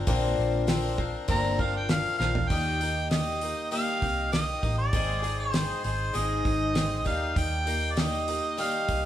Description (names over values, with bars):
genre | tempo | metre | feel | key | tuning
folk rock and heartland rock | 99 BPM | 4/4 | straight | unclear | A4 = 440 Hz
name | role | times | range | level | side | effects
picked twelve-string acoustic guitar | accompaniment | 0.0-9.1 s | Ab2 to Bb4 | -30 LUFS | left 3 dB | none
hollow-body short-scale fingered electric bass | bass | 0.0-9.1 s | G1 to Eb2 | -31 LUFS | right 1 dB | none
damped 70s drum kit | drums | 0.1-9.0 s | hi-hat, kick drum, snare drum, toms | -31 LUFS | equal | none
mellow harmonica | melody | 1.3-9.0 s | C5 to Bb5 | -30 LUFS | right 2 dB | none
room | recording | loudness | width
moderate large studio reverb, RT60 1.3 s | band playing live in one room | -25 LUFS | side -11 dB against mid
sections
0.0-2.5 A section; 2.5-9.1 B section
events
harmonica solo 0.0-2.5; drum fill 2.2-2.5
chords
0.0 Bbadd9; 2.5 Eb; 4.9 Ab; 7.1 Eb